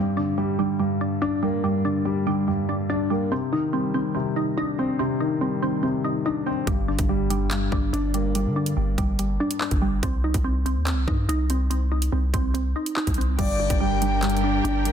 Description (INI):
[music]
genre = hip hop, drill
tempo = 143 BPM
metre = 4/4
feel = half-time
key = G minor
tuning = A4 = 440 Hz
[part]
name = dark concert grand piano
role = accompaniment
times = 0.0-10.1, 13.4-14.9 s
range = G2 to D4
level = -25 LUFS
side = left 4 dB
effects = low-pass filter
[part]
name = glassy wavetable pluck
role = arpeggios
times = 0.0-14.9 s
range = G3 to Eb4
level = -26 LUFS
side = right 3 dB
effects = chorus, low-pass filter, tape echo
[part]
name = long sustained 808-style bass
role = bass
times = 6.7-14.9 s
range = G1 to D3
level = -25 LUFS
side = equal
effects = none
[part]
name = drill drum kit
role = drums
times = 6.7-14.9 s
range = crash cymbal, handclaps, hi-hat, kick drum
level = -26 LUFS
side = equal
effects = none
[part]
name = breathy flute-like synth lead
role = second line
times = 13.4-14.9 s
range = D5 to G5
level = -27 LUFS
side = left 1 dB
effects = chorus, tape echo
[part]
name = dark symphonic string section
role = sustained chords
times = 13.4-14.9 s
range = D4 to G5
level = -32 LUFS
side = equal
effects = none
[sound]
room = light reverb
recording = dense, heavily limited modern master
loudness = -21 LUFS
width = side -8 dB against mid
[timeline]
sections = 0.0-13.4 A section; 13.4-14.9 B section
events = none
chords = 0.0 Gm; 3.3 Cmadd9; 6.7 Gm; 10.0 Cm; 13.4 Gm